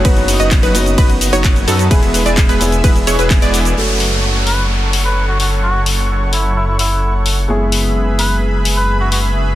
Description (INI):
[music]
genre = EDM, festival progressive house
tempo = 129 BPM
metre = 4/4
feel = straight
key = F# minor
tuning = A4 = 442 Hz
[part]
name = warm grand piano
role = accompaniment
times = 0.0-9.6 s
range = F#3 to A4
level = -21 LUFS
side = left 1 dB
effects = sidechain pumping, dub echo
[part]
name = supersaw pad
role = sustained chords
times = 0.0-9.6 s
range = G#4 to E6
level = -24 LUFS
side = right 1 dB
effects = sidechain pumping
[part]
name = wide unison pluck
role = arpeggios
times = 0.0-3.7 s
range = A4 to D#5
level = -21 LUFS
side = right 1 dB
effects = sidechain pumping, dub echo
[part]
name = supersaw stab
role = riff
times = 0.0-3.7 s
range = F#3 to D#5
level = -20 LUFS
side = right 1 dB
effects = sidechain pumping, low-pass filter, dub echo
[part]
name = detuned saw bass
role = bass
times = 0.0-9.6 s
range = E1 to F#2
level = -16 LUFS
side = equal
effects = sidechain pumping
[part]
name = electronic kick drum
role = drums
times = 0.0-3.4 s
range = none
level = -12 LUFS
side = equal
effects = none
[part]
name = house drum kit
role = drums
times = 0.0-9.2 s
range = cabasa, handclaps, hi-hat, ride cymbal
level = -20 LUFS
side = left 2 dB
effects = none
[part]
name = downlifter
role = sound effects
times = 3.8-7.5 s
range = none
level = -23 LUFS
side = equal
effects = none
[part]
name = trumpet with cup mute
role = melody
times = 4.5-9.2 s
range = E4 to B4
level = -21 LUFS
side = equal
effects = dub echo
[sound]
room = little or no reverb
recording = dense, heavily limited modern master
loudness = -11 LUFS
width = side -14 dB against mid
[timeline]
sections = 0.0-3.8 A section; 3.8-9.6 B section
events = drop 0.0-3.8; band accent 3.3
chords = 0.0 B/F#; 1.9 E; 3.8 F#m; 7.5 E/F#